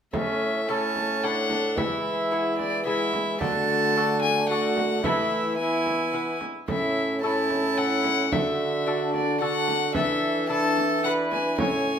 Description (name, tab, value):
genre	classical, renaissance-style consort dance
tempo	110 BPM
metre	3/4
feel	straight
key	A major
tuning	A4 = 440 Hz
part	rich violin	melody	0.1-12.0 s	D5 to A5	-27 LUFS	left 3 dB	none
part	warm viola	second line	0.1-12.0 s	C#4 to C#5	-30 LUFS	right 6 dB	none
part	lute	accompaniment	0.1-12.0 s	A2 to C#5	-31 LUFS	left 3 dB	none
part	mellow trombone	accompaniment	0.1-12.0 s	G#3 to D4	-32 LUFS	left 1 dB	none
part	mellow bassoon	bass	0.1-12.0 s	A2 to E3	-28 LUFS	right 1 dB	none
part	frame drum	percussion	0.1-11.8 s	none	-32 LUFS	right 2 dB	none
room	wet stone room reverb, RT60 1.1 s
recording	none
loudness	-22 LUFS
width	side -8 dB against mid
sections	0.1-12.0 A section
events	none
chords	0.1 A; 1.8 E; 3.4 D; 5.0 Esus4; 5.6 E; 6.7 A; 8.3 D; 10.0 E7sus4; 11.0 E7